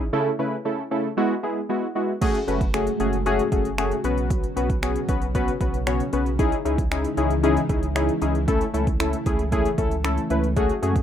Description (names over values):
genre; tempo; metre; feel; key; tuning
dance-pop; 115 BPM; 4/4; straight; F# dorian; A4 = 440 Hz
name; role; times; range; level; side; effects
warm analog keys; accompaniment; 0.0-11.0 s; C#3 to C#5; -23 LUFS; left 2 dB; chorus, sidechain pumping
warm sub bass; bass; 0.0-11.0 s; F#1 to F#2; -27 LUFS; right 1 dB; sidechain pumping
string machine, cellos; sustained chords; 2.2-11.0 s; B2 to A4; -30 LUFS; equal; ensemble chorus, sidechain pumping
deep house drum kit; drums; 2.2-11.0 s; crash cymbal, finger snaps, hi-hat, kick drum; -25 LUFS; right 1 dB; none
room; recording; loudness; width
light reverb; rough home demo mix; -21 LUFS; side -9 dB against mid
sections
0.0-2.2 A section; 2.2-11.0 B section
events
none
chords
0.1 A/C#; 1.2 Eadd9; 2.2 F#madd9; 4.0 Bsus2; 6.4 C#madd9; 8.5 A/C#